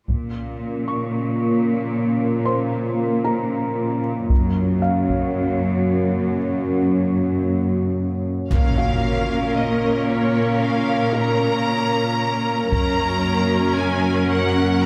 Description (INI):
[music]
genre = cinematic, hybrid orchestral and electronic film score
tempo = 114 BPM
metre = 4/4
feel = straight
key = Bb minor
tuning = A4 = 440 Hz
[part]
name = dark analog pad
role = sustained chords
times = 0.4-14.9 s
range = Bb3 to F5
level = -26 LUFS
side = equal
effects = chorus, low-pass filter
[part]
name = rich studio cello section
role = bass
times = 0.1-14.9 s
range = Gb2 to Bb2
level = -24 LUFS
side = equal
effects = none
[part]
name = taiko ensemble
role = drums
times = 0.1-1.1, 4.3-5.3, 8.5-9.5, 12.7-13.7 s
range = none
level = -26 LUFS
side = equal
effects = none
[part]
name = felt-muted upright piano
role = texture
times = 0.9-12.7 s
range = Gb4 to Db6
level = -32 LUFS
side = equal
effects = tape echo
[part]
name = rich symphonic violin section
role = melody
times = 8.5-14.9 s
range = Db5 to Bb5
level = -28 LUFS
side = equal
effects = low-pass filter
[part]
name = clear symphonic viola section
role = accompaniment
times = 8.5-14.9 s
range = Db4 to Bb4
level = -27 LUFS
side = equal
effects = low-pass filter
[part]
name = impact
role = sound effects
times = 8.5-10.6 s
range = none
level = -27 LUFS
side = equal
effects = none
[sound]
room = moderate scoring stage reverb, RT60 1.6 s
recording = none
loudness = -21 LUFS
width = mono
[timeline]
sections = 0.1-8.5 A section; 8.5-14.9 B section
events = filter sweep 0.1-8.5; impact 8.5-10.6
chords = 0.1 Bbm; 4.3 Gb; 8.5 Bbm; 12.7 Gb